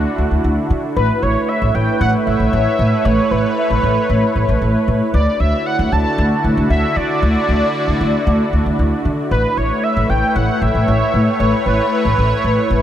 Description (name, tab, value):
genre	pop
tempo	115 BPM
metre	4/4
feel	straight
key	unclear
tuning	A4 = 440 Hz
part	sweeping resonant pad	sustained chords	0.0-12.8 s	D3 to C#5	-20 LUFS	equal	chorus
part	upright bass	bass	0.0-12.8 s	A1 to D3	-17 LUFS	equal	none
part	octave-doubled lead	melody	1.0-12.8 s	B4 to A5	-20 LUFS	equal	chorus, phaser, analog delay
part	mellow synth brass	second line	1.0-4.3, 9.3-12.7 s	B4 to E5	-25 LUFS	equal	chorus, analog delay
room	moderate huge ambient reverb, RT60 8.4 s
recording	dreamy mix soaked in reverb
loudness	-14 LUFS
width	side -11 dB against mid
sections	0.0-9.3 A section; 9.3-12.8 A section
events	none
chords	0.0 Dadd9; 1.0 Aadd9; 5.1 Dadd9; 9.3 Aadd9